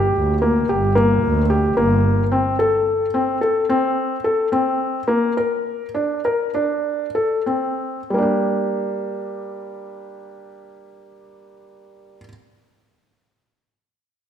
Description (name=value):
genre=contemporary instrumental, chamber music in an uneven meter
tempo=94-111 BPM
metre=5/4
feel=straight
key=G minor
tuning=A4 = 441 Hz
part: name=felt-muted upright piano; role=arpeggios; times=0.0-12.3 s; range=G3 to Bb4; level=-19 LUFS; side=left 1 dB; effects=none
part: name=warm double bass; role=bass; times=0.0-2.2 s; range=G1 to D2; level=-20 LUFS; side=right 1 dB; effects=none
room=moderate recital hall reverb, RT60 1.5 s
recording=none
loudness=-17 LUFS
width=side -9 dB against mid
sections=0.0-8.1 A section; 8.1-11.3 B section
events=slowing down 3.4-8.1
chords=0.0 Gm; 2.3 Am/C; 5.1 Bb; 8.1 Gm